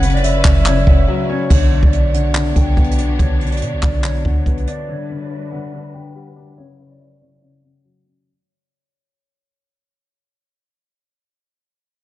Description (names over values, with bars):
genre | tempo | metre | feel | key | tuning
hip hop, trap | 142 BPM | 4/4 | half-time | B minor | A4 = 440 Hz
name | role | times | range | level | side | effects
concert harp | melody | 0.0-10.0 s | C#5 to G5 | -25 LUFS | right 1 dB | low-pass filter, tape echo
breathy flute-like synth lead | second line | 0.0-1.5 s | C#5 to F#5 | -27 LUFS | right 4 dB | chorus, tape echo
felt-muted upright piano | accompaniment | 0.0-8.3 s | C#3 to D4 | -22 LUFS | left 4 dB | low-pass filter
warm symphonic string section | sustained chords | 0.0-8.2 s | F#3 to C#5 | -28 LUFS | equal | low-pass filter
clean 808-style bass | bass | 0.0-4.7 s | F#1 to B2 | -17 LUFS | equal | none
jazz brush drum kit | drums | 0.0-4.8 s | crash cymbal, handclaps, hi-hat, kick drum | -15 LUFS | equal | none
room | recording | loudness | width
studio reverb | nothing above 10.3 kHz | -13 LUFS | side -15 dB against mid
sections
0.0-1.5 A section; 1.5-8.3 B section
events
break 1.1-1.5; fade-out 1.5-8.3; filter sweep 1.5-8.3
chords
0.0 F#7sus4; 1.5 Bmadd9; 4.9 Gmaj7; 6.6 F#7sus4